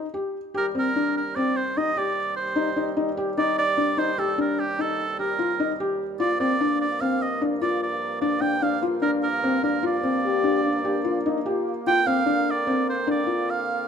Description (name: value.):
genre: contemporary instrumental, chamber music in an uneven meter.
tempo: 148 BPM.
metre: 7/4.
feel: straight.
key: unclear.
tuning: A4 = 440 Hz.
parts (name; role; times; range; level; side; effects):
warm oboe; melody; 0.0-13.9 s; G4 to G5; -25 LUFS; right 3 dB; none.
felt-muted upright piano; arpeggios; 0.0-13.5 s; C4 to G4; -25 LUFS; left 3 dB; none.
clear woodwind section; sustained chords; 0.6-13.9 s; Eb2 to C4; -32 LUFS; right 2 dB; none.
mellow French horn; second line; 10.3-11.8 s; D4 to G4; -27 LUFS; left 5 dB; none.
room: light reverb.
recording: close, detailed microphones.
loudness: -22 LUFS.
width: side -7 dB against mid.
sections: 0.5-13.9 A section.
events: none.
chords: 0.0 N.C.; 0.5 Eb6; 6.2 Gm7; 11.9 Bbadd9.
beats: 0.14 | 0.55 0.95 1.36 1.76 2.16 2.57 2.97 | 3.38 3.78 4.18 4.59 4.99 5.40 5.80 | 6.20 6.61 7.01 7.42 7.82 8.22 8.63 | 9.03 9.44 9.84 10.25 10.65 11.06 11.46 | 11.87 12.27 12.67 13.08 13.48.